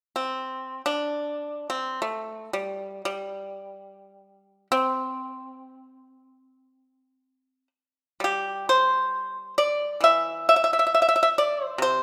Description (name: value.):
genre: chinese traditional, Chinese solo plucked strings.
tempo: free time.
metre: none.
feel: none.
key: C gong mode.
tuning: A4 = 440 Hz.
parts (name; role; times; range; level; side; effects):
pipa; solo; 0.2-12.0 s; C3 to E5; -25 LUFS; equal; none.
room: moderate scoring stage reverb, RT60 1.9 s.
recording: none.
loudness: -25 LUFS.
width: mono.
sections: 0.0-8.2 A section; 8.2-12.0 B section.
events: none.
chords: none.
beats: free time.